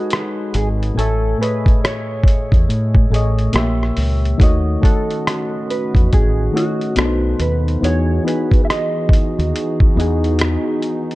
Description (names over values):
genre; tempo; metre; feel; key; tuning
lo-fi hip hop; 70 BPM; 4/4; swing 64% on 16ths; unclear; A4 = 439 Hz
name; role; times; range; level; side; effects
mellow electric guitar; melody; 0.0-10.4 s; F#4 to E5; -25 LUFS; right 1 dB; analog chorus, low-pass filter, analog delay
soft electric-piano-like synth keys; accompaniment; 0.0-11.2 s; A2 to G#5; -21 LUFS; left 2 dB; chorus, low-pass filter
lo-fi sampler-style drum kit; drums; 0.1-11.2 s; hi-hat, kick drum, rim click; -15 LUFS; equal; none
deep dub fingered electric bass; bass; 0.5-10.6 s; G#1 to A2; -18 LUFS; equal; none
dark analog pad; sustained chords; 4.4-11.2 s; D#3 to G#4; -25 LUFS; right 2 dB; chorus, low-pass filter
room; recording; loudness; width
little or no reverb; dark, warm production; -14 LUFS; side -18 dB against mid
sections
0.0-11.2 A section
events
none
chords
0.0 G#m7; 1.0 Amaj7#11; 3.5 A#dim7; 4.4 D#m7b5; 7.0 B7b9; 7.8 Emaj9